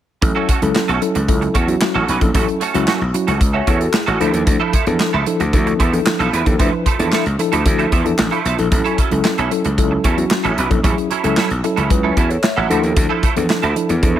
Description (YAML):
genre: early-eighties boogie funk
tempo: 113 BPM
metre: 4/4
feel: straight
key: A major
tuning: A4 = 440 Hz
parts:
  - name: mellow tine electric piano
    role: accompaniment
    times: 0.2-14.2 s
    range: F3 to F#5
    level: -20 LUFS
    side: left 2 dB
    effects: medium stereo tremolo
  - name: semi-hollow electric guitar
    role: riff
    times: 0.2-14.2 s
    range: F3 to B4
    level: -22 LUFS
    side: right 6 dB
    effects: ensemble chorus
  - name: gritty slap bass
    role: bass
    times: 0.2-14.2 s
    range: A1 to E2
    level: -19 LUFS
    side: equal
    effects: overdrive
  - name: modern studio drum kit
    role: drums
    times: 0.2-14.2 s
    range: handclaps, hi-hat, kick drum, snare drum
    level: -19 LUFS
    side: equal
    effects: none
room: small room ambience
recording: none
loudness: -14 LUFS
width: side -11 dB against mid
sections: 0.2-14.2 A section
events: none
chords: 0.2 A6; 4.2 Dmadd9; 8.7 A6; 12.7 Dmadd9